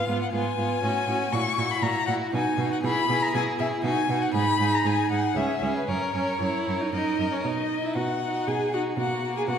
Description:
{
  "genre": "quick classical-period movement for string quartet",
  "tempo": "119 BPM",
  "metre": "3/4",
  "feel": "straight",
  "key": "B major",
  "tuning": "A4 = 440 Hz",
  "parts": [
    { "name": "rich violin", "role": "melody", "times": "0.0-9.6 s", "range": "B4 to C#6", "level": "-27 LUFS", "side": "left 5 dB", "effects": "none" },
    { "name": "rich violin", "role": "second line", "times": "0.0-9.6 s", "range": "A#3 to A#4", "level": "-31 LUFS", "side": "left 1 dB", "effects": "none" },
    { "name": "rich viola", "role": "accompaniment", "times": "0.0-9.6 s", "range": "Cb4 to G#4", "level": "-29 LUFS", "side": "right 4 dB", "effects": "none" },
    { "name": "rich cello", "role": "bass", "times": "0.1-9.6 s", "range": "C#2 to B2", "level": "-30 LUFS", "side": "right 3 dB", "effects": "none" }
  ],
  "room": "wet scoring stage reverb, RT60 1.8 s",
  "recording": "none",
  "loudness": "-23 LUFS",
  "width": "side -8 dB against mid",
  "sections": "0.0-7.5 A section; 7.5-9.6 B section",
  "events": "none",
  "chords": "0.0 Fdim/Ab; 0.8 F#m; 1.3 F#7/A#; 2.3 B; 2.8 E/B; 3.8 B; 4.3 G#5; 5.4 C#m; 5.9 F#; 7.5 B; 9.0 G#m9/B"
}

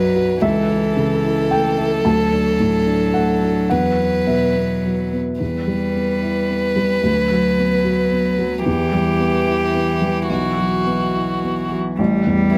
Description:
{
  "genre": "neoclassical piano and strings",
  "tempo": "110 BPM",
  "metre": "3/4",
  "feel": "rubato",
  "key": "E dorian",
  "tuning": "A4 = 440 Hz",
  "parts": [
    { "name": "warm violin", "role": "melody", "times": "0.0-12.6 s", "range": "E4 to B4", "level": "-23 LUFS", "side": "equal", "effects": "none" },
    { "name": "warm cello", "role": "second line", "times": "0.0-12.6 s", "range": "E3 to G3", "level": "-25 LUFS", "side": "equal", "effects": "none" },
    { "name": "dark upright piano", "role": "accompaniment", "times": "0.0-12.6 s", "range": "A1 to A5", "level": "-22 LUFS", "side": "equal", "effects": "none" }
  ],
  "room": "little or no reverb",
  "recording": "close, detailed microphones",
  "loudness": "-18 LUFS",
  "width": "mono",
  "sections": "0.0-5.4 A section; 5.4-12.0 B section",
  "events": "none",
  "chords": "0.4 A/C#; 2.0 D; 3.7 Esus2; 5.4 Em; 7.0 Bm/D; 8.7 Em; 10.3 Bsus4; 12.0 A5"
}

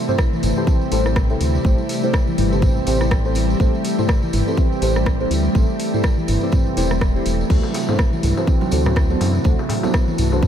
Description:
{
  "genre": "afro house",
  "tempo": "123 BPM",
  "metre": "4/4",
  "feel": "swing 58% on 16ths",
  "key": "A dorian",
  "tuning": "A4 = 440 Hz",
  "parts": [
    { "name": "ethereal airy pad", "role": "sustained chords", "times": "0.0-10.5 s", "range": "C3 to G4", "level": "-25 LUFS", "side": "left 2 dB", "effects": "ensemble chorus, built-in reverb, sidechain pumping" },
    { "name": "handpan", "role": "arpeggios", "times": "0.1-10.5 s", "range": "E3 to E4", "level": "-24 LUFS", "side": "right 2 dB", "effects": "sidechain pumping, analog delay" },
    { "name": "deep mellow chord stab", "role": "stabs", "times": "0.1-10.5 s", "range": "C4 to C5", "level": "-26 LUFS", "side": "equal", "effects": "chorus, phaser, sidechain pumping, analog delay" },
    { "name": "afro-pop drum kit", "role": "drums", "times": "0.1-10.5 s", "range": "crash cymbal, hi-hat, rim click, toms", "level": "-27 LUFS", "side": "equal", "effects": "none" },
    { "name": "tambourine", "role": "percussion", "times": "0.1-10.5 s", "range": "none", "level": "-36 LUFS", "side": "right 2 dB", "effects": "none" },
    { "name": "electronic kick drum", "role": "drums", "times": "0.2-10.5 s", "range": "none", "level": "-18 LUFS", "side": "equal", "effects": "none" },
    { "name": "round analog bass", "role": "bass", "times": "0.4-10.5 s", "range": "E1 to F#2", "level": "-21 LUFS", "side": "equal", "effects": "sidechain pumping" },
    { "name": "congas", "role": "percussion", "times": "7.5-10.4 s", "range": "none", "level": "-29 LUFS", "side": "right 3 dB", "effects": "none" },
    { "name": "darbuka", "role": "percussion", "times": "7.6-10.4 s", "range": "none", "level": "-31 LUFS", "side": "left 3 dB", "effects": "none" }
  ],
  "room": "light reverb, studio reverb",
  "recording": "none",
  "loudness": "-16 LUFS",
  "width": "side -9 dB against mid",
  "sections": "0.0-10.5 A section",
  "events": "none",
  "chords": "0.0 Am7; 7.5 D7"
}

